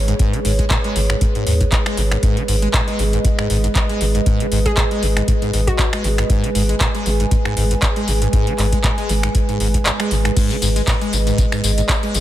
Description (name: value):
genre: acid house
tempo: 118 BPM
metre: 4/4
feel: swing 55% on 16ths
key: G# minor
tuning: A4 = 440 Hz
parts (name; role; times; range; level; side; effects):
- dark analog pad; sustained chords; 0.0-12.2 s; G#3 to G#5; -23 LUFS; right 1 dB; chorus, sidechain pumping
- warm sub bass; bass; 0.0-12.2 s; G#1 to D#2; -19 LUFS; equal; sidechain pumping
- acid bass, saw; riff; 0.1-12.2 s; G#1 to G#3; -23 LUFS; equal; tube saturation, wide subtle chorus, sidechain pumping, digital delay
- booming analog drum machine; drums; 0.1-12.2 s; crash cymbal, finger snaps, handclaps, hi-hat, tambourine; -22 LUFS; equal; none
- electronic kick drum; drums; 0.2-12.0 s; none; -18 LUFS; equal; none
- hollow square pluck; melody; 4.7-6.4 s; F#4 to G#4; -26 LUFS; equal; analog chorus, digital delay
room: light reverb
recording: none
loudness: -15 LUFS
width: side -13 dB against mid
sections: 0.0-12.2 A section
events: kick drops out 9.9-10.4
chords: 0.0 G#m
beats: | 0.20 0.70 1.21 1.72 | 2.23 2.74 3.25 3.75 | 4.26 4.77 5.28 5.79 | 6.30 6.80 7.31 7.82 | 8.33 8.84 9.35 9.86 | 10.36 10.87 11.38 11.89